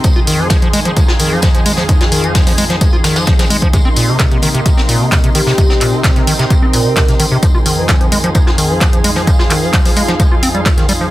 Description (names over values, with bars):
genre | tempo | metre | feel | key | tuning
acid house | 130 BPM | 4/4 | straight | unclear | A4 = 439 Hz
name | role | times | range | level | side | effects
lush unison pad | sustained chords | 0.0-11.1 s | F2 to Ab4 | -20 LUFS | equal | chorus, sidechain pumping
acid bass, square | riff | 0.0-11.1 s | Bb2 to F4 | -16 LUFS | equal | overdrive, digital delay
electronic kick drum | drums | 0.0-10.8 s | none | -12 LUFS | equal | none
punchy analog drum machine | drums | 0.0-11.0 s | handclaps, hi-hat | -18 LUFS | equal | none
vintage brush drum kit | drums | 0.0-11.1 s | hi-hat, snare drum, tambourine | -23 LUFS | left 1 dB | sidechain pumping on hats, high-pass filter on hats, soft clipping on snare, high-pass filter on snare, sidechain pumping on perc, high-pass filter on perc, high-pass filter on room
dark studio string section | texture | 0.0-11.1 s | Eb4 to C6 | -24 LUFS | equal | sidechain pumping
vibraphone with soft mallets | melody | 5.3-6.9 s | G4 to Bb4 | -20 LUFS | equal | digital delay
room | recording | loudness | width
light reverb | dense, heavily limited modern master | -9 LUFS | side -16 dB against mid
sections
0.0-11.1 A section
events
fade-in on string section 0.0-11.1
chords
0.0 Fm7; 3.7 Cm7; 7.4 Fm7